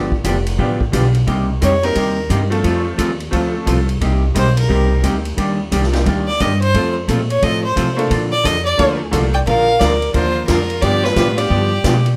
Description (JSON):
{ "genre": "country, western swing", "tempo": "176 BPM", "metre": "4/4", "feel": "swing 64% on 8ths", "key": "Bb major", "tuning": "A4 = 441 Hz", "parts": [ { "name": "vintage hollow-body jazz guitar", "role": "accompaniment", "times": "0.0-12.0 s", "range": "C3 to Bb4", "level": "-23 LUFS", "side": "equal", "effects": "none" }, { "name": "upright bass", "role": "bass", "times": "0.0-12.2 s", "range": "F1 to C3", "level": "-20 LUFS", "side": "equal", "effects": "none" }, { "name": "swinging big-band drum kit", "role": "drums", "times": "0.1-12.1 s", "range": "hi-hat, kick drum, ride cymbal, snare drum", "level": "-26 LUFS", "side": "equal", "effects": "none" }, { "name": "tack piano", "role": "accompaniment", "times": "0.6-11.5 s", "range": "F3 to Bb4", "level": "-26 LUFS", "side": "equal", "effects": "none" }, { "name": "clear fiddle", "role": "melody", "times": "1.6-2.3, 4.4-12.1 s", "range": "Bb4 to G5", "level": "-21 LUFS", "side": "equal", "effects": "none" }, { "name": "clear fiddle", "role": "second line", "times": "9.3-12.1 s", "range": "F4 to D5", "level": "-24 LUFS", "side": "equal", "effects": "none" } ], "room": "moderate club reverb, RT60 0.6 s", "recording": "none", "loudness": "-16 LUFS", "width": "mono", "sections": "0.0-9.5 A section; 9.5-12.2 B section", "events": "fiddle solo 0.0-9.5", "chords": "0.0 G7; 1.3 Cm7; 2.6 F; 4.0 Cm7; 5.4 Ebmaj7; 6.7 F; 8.1 Bbmaj7; 9.5 Bb; 10.8 G7", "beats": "0.24 0.58 0.93 | 1.27 1.61 1.96 2.30 | 2.64 2.98 3.33 3.67 | 4.01 4.35 4.70 5.04 | 5.38 5.72 6.06 6.40 | 6.74 7.08 7.42 7.76 | 8.10 8.44 8.78 9.12 | 9.46 9.80 10.14 10.48 | 10.82 11.16 11.50 11.84" }